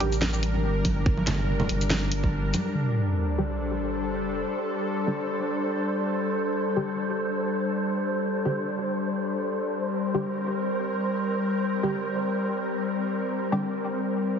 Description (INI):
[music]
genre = deep dubstep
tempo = 142 BPM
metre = 4/4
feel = swing 56% on 16ths, half-time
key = G minor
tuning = A4 = 440 Hz
[part]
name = bowed-like drone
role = sustained chords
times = 0.0-14.4 s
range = G3 to Bb4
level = -28 LUFS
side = left 2 dB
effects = built-in reverb
[part]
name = filtered dub chord stab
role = stabs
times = 0.0-0.1, 3.4-13.6 s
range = D3 to G4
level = -31 LUFS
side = equal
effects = analog chorus, dub echo
[part]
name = soft dub sub bass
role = bass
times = 0.0-2.5 s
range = G1 to A1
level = -27 LUFS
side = right 1 dB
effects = none
[part]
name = garage drum kit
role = drums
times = 0.0-2.6 s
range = hi-hat, shaker, snare drum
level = -30 LUFS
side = equal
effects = low-pass filter on hats, studio reverb, low-pass filter on perc, low-pass filter on snare
[part]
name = congas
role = percussion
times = 0.2-2.6 s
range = none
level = -31 LUFS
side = right 1 dB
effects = dub echo
[part]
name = electronic kick drum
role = drums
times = 0.8-2.3 s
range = none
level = -24 LUFS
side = right 1 dB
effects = studio reverb
[part]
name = sub drop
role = sound effects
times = 2.7-4.4 s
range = none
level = -28 LUFS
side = right 1 dB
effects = none
[part]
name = wind-like tuned noise texture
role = texture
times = 3.3-14.4 s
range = C5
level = -32 LUFS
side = right 2 dB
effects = built-in reverb
[sound]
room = wet echo chamber reverb, RT60 1.6 s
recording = heavily compressed radio sound, multiband compression, nothing above 7.5 kHz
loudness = -24 LUFS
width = side -7 dB against mid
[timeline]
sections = 0.0-2.7 A section; 2.7-14.4 B section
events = drop 0.0-2.7; impact 2.7-4.4; filter sweep on synth stab 2.7-14.4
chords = 0.0 G5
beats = 0.21 0.64 | 1.06 1.48 1.90 2.33 | 2.75 3.17 3.59 4.02 | 4.44 4.86 5.29 5.71 | 6.13 6.55 6.97 7.40 | 7.82 8.24 8.66 9.09 | 9.51 9.93 10.36 10.78 | 11.20 11.62 12.04 12.47 | 12.89 13.31 13.73 14.16